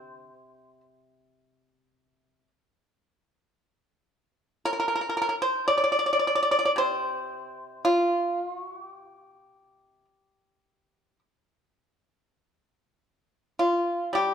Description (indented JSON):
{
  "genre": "chinese traditional, Chinese solo plucked strings",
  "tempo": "49-56 BPM",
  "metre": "4/4",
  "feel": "rubato",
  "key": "unclear",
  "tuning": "A4 = 439 Hz",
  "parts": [
    { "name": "pipa", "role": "solo", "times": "0.0-14.3 s", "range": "C3 to D5", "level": "-23 LUFS", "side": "equal", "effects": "none" }
  ],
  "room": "moderate recital hall reverb, RT60 1.6 s",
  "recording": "dark, warm production",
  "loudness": "-23 LUFS",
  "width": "side -8 dB against mid",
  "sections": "0.0-12.4 A section; 12.4-14.3 B section",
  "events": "none",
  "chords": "none",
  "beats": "0.30 1.39 2.48 | 3.56 4.64 5.71 6.78 | 7.86 8.95 10.06 11.24 | 12.43 13.57"
}